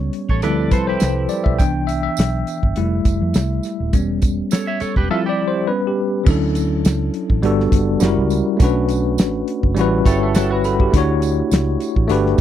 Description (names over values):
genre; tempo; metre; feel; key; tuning
lush 1970s-style soul; 103 BPM; 4/4; swing 54% on 16ths; C major, D major from 6.3 s; A4 = 440 Hz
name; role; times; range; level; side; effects
bell-like tine electric piano; accompaniment; 0.0-12.4 s; E3 to B5; -19 LUFS; left 2 dB; fast stereo tremolo
vintage muted fingered electric bass; bass; 0.0-12.4 s; Eb1 to F2; -21 LUFS; right 1 dB; none
damped 70s drum kit; drums; 0.1-12.4 s; crash cymbal, hi-hat, kick drum, snare drum; -16 LUFS; equal; none
clean electric guitar; riff; 0.3-5.7, 10.1-10.9 s; E4 to E5; -25 LUFS; right 4 dB; analog chorus
tambourine; percussion; 0.4-12.4 s; none; -36 LUFS; right 24 dB; none
room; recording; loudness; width
little or no reverb; dry, close 1970s-style studio recording; -16 LUFS; side -11 dB against mid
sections
0.0-6.3 A section; 6.3-12.4 B section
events
tine electric piano solo 0.0-6.3; tine electric piano fill 9.8-10.9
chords
0.4 Dm11; 1.6 Cmaj7; 2.8 Fmaj7; 3.9 Em6; 5.1 Fmaj13; 5.7 G; 6.3 Dmaj9; 7.4 Gmaj7; 8.0 F#7b9; 8.6 Bm9; 9.8 A13; 10.9 Dmaj9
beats
0.43 1.01 | 1.60 2.18 2.76 3.35 | 3.93 4.51 5.10 5.68 | 6.26 6.85 7.43 8.01 | 8.60 9.18 9.76 10.35 | 10.93 11.51 12.10